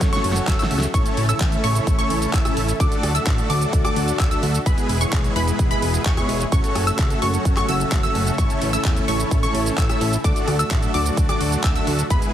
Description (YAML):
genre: EDM, festival progressive house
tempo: 129 BPM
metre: 4/4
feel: straight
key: A major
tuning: A4 = 440 Hz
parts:
  - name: lush unison pad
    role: sustained chords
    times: 0.0-12.3 s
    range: B2 to F#4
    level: -29 LUFS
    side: equal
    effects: chorus, phaser, sidechain pumping
  - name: wide unison pluck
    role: arpeggios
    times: 0.0-12.3 s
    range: B5 to E6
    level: -27 LUFS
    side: equal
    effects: sidechain pumping, ping-pong delay
  - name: dense compressed supersaw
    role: riff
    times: 0.0-12.3 s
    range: G#3 to E5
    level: -24 LUFS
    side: equal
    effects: vintage 12-bit sampler grit, sidechain pumping, ping-pong delay
  - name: fat analog bass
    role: bass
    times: 0.0-12.2 s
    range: E1 to F#2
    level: -24 LUFS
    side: equal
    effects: sidechain pumping
  - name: electronic kick drum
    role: drums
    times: 0.0-12.2 s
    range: none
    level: -20 LUFS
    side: equal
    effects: none
  - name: pop drum kit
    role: drums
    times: 0.0-12.3 s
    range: handclaps, hi-hat, rim click, shaker, snare drum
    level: -28 LUFS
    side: right 1 dB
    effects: overdrive
room: digital ambience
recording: heavily compressed radio sound, multiband compression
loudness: -17 LUFS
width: side -11 dB against mid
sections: 0.0-12.3 A section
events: drum fill 0.0-0.9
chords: 0.0 F#m; 0.9 A; 2.8 D; 4.7 E; 6.5 F#m; 8.4 A; 10.2 D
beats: 0.01 0.48 | 0.94 1.41 1.87 2.34 | 2.80 3.27 3.73 4.20 | 4.66 5.13 5.59 6.06 | 6.52 6.99 7.45 7.92 | 8.38 8.85 9.31 9.78 | 10.24 10.71 11.17 11.64 | 12.10